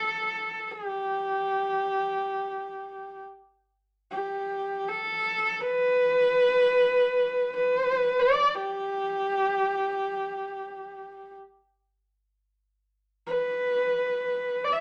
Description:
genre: mongolian traditional, Mongolian folk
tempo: free time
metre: none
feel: none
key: G gong mode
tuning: A4 = 440 Hz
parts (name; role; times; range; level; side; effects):
- rich horsehead fiddle; solo; 0.0-14.8 s; G4 to E5; -27 LUFS; equal; none
room: wet studio reverb, RT60 0.7 s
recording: none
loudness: -27 LUFS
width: mono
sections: 0.0-12.8 A section; 12.8-14.8 A section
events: none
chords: none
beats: free time

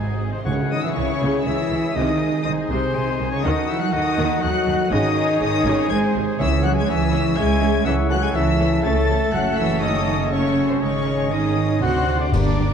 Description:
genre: cinematic, heroic adventure film score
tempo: 122 BPM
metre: 3/4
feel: straight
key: C# harmonic minor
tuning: A4 = 441 Hz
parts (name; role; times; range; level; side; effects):
- warm symphonic violin section; melody; 0.0-12.7 s; C5 to A6; -30 LUFS; left 6 dB; none
- bright oboe; second line; 0.0-12.3 s; Ab4 to A5; -33 LUFS; left 1 dB; none
- clear clarinet; second line; 0.0-12.7 s; Eb4 to G#5; -31 LUFS; left 3 dB; none
- rich symphonic violin section; second line; 0.0-12.7 s; Bb3 to C#5; -34 LUFS; left 3 dB; none
- silver concert flute; second line; 0.0-12.7 s; Ab4 to Bb5; -29 LUFS; left 3 dB; none
- warm symphonic viola section; accompaniment; 0.0-12.7 s; B#2 to F#4; -28 LUFS; equal; none
- dark French horn section; sustained chords; 0.0-12.5 s; D#3 to A4; -26 LUFS; left 4 dB; none
- rich symphonic cello section; bass; 0.0-12.7 s; Ab2 to F#4; -25 LUFS; right 3 dB; none
- warm symphonic double bass section; bass; 0.0-12.7 s; F#1 to G2; -25 LUFS; right 3 dB; none
- clear trombone section; sustained chords; 0.5-12.5 s; G2 to D4; -31 LUFS; right 1 dB; none
- warm trumpet; stabs; 0.5-12.7 s; F#4 to F#5; -30 LUFS; equal; none
- tam-tam, cymbal swell, clash cymbals and concert bass drum; percussion; 0.5-2.4, 9.3-12.7 s; none; -33 LUFS; left 2 dB; none
- timpani; percussion; 0.5-1.2, 6.4-7.1, 12.3-12.7 s; G2 to C#3; -25 LUFS; equal; none
room: wet concert hall reverb, RT60 2.0 s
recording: dark, warm production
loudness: -18 LUFS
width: side -7 dB against mid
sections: 0.5-12.3 A section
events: band accent 0.5-1.0, 12.3-12.7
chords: 0.5 C#m; 2.0 G#/B#; 3.5 D#dim; 4.9 G#sus4; 5.9 G#; 6.4 C#m; 7.9 A/C#; 9.3 F#m; 10.8 G#sus4; 11.8 D7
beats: | 0.47 0.97 1.46 | 1.96 2.45 2.95 | 3.45 3.94 4.44 | 4.93 5.42 5.91 | 6.41 6.89 7.38 | 7.87 8.36 8.85 | 9.34 9.83 10.32 | 10.81 11.32 11.82 | 12.33

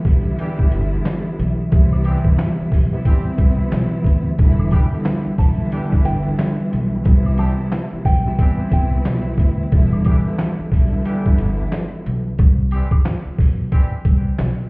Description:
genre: hip hop, boom-bap hip-hop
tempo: 90 BPM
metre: 4/4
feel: swing 60% on 16ths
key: E minor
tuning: A4 = 439 Hz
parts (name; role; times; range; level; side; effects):
- warm studio string section; accompaniment; 0.0-12.3 s; C3 to E4; -22 LUFS; equal; none
- upright bass; bass; 0.1-14.6 s; E1 to D2; -20 LUFS; equal; none
- trip hop sampler-style drum kit; drums; 0.1-14.6 s; handclaps, hi-hat, kick drum, snare drum; -16 LUFS; equal; none
- tube shaker and woodblock; percussion; 0.1-14.6 s; none; -37 LUFS; left 2 dB; none
- clear horn section; stabs; 0.4-13.9 s; E3 to G4; -36 LUFS; equal; analog delay
- nylon-string guitar; melody; 4.7-9.2 s; G5 to B5; -29 LUFS; right 1 dB; analog delay
room: small room ambience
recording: heard muffled through a wall, stone room reverb, vinyl crackle, EQ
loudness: -15 LUFS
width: side -30 dB against mid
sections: 0.0-14.7 A section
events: break 0.0-1.7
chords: 0.0 Em7; 1.7 Cmaj7; 4.4 Em7; 7.1 Cmaj7; 9.7 Em7; 12.4 Cmaj7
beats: 0.39 1.06 | 1.72 2.39 3.06 3.72 | 4.39 5.06 5.72 6.39 | 7.06 7.72 8.39 9.06 | 9.72 10.39 11.06 11.72 | 12.39 13.06 13.72 14.39

